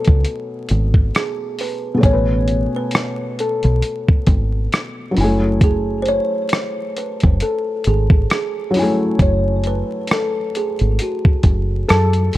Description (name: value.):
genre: lo-fi hip hop.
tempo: 67 BPM.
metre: 4/4.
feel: swing 57% on 16ths.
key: F# dorian.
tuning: A4 = 440 Hz.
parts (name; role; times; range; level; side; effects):
kalimba; melody; 0.0-12.3 s; F#4 to C#5; -23 LUFS; equal; none.
felt-muted upright piano; accompaniment; 0.0-12.4 s; B2 to G#5; -22 LUFS; left 1 dB; cassette tape.
dusty soul sampler-style drum kit; drums; 0.0-12.4 s; hi-hat, kick drum, rim click; -15 LUFS; equal; none.
deep dub fingered electric bass; bass; 0.1-12.4 s; F#1 to F#2; -17 LUFS; equal; none.
room: studio ambience.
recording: dark, warm production, vinyl crackle.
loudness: -15 LUFS.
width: side -16 dB against mid.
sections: 0.0-12.4 A section.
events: none.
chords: 0.0 B13; 2.0 Amaj9; 5.2 F#m9.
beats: 0.24 1.14 | 2.04 2.93 3.83 4.72 | 5.62 6.51 7.41 8.30 | 9.20 10.10 10.99 11.89.